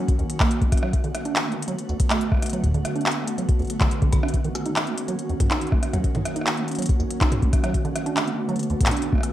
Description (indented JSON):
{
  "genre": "IDM",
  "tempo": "141 BPM",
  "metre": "4/4",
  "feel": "straight",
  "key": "unclear",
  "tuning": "A4 = 440 Hz",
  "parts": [
    { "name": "glassy FM pad", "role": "sustained chords", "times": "0.0-9.3 s", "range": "D3 to Gb4", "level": "-28 LUFS", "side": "right 1 dB", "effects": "ensemble chorus, built-in reverb" },
    { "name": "deep acid bass", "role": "arpeggios", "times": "0.0-9.2 s", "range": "D2 to Eb4", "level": "-28 LUFS", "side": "right 3 dB", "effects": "ping-pong delay" },
    { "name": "electronic kick drum", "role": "drums", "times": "0.1-9.2 s", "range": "none", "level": "-21 LUFS", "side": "equal", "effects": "overdrive" },
    { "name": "organic electronic drum kit", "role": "drums", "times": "0.1-9.3 s", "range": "handclaps, hi-hat, rim click, toms", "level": "-27 LUFS", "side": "equal", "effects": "none" }
  ],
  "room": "wet studio reverb, RT60 0.6 s",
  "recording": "rough home demo mix",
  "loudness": "-20 LUFS",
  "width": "side -13 dB against mid",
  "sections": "0.0-9.3 A section",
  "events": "none",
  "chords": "0.0 Ebm7; 0.9 Bm7; 4.3 Ebm7; 7.7 Bm7"
}